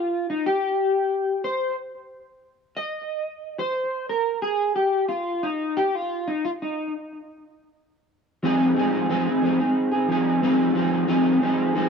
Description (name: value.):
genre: indie pop.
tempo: 90 BPM.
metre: 4/4.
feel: straight.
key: unclear.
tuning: A4 = 437 Hz.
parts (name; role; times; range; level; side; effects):
electric guitar at the edge of break-up; solo; 0.0-11.9 s; F3 to Eb5; -21 LUFS; equal; analog chorus, vibrato effect, analog delay.
room: moderate studio reverb, RT60 0.5 s.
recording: dark, warm production.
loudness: -21 LUFS.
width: side -6 dB against mid.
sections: 0.0-8.4 A section; 8.4-11.9 B section.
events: clean electric guitar solo 0.0-8.4.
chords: 0.0 N.C.; 8.4 Fm7.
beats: | 0.45 1.11 1.78 2.44 | 3.11 3.77 4.44 5.11 | 5.77 6.44 7.10 7.77 | 8.43 9.10 9.76 10.43 | 11.09 11.76.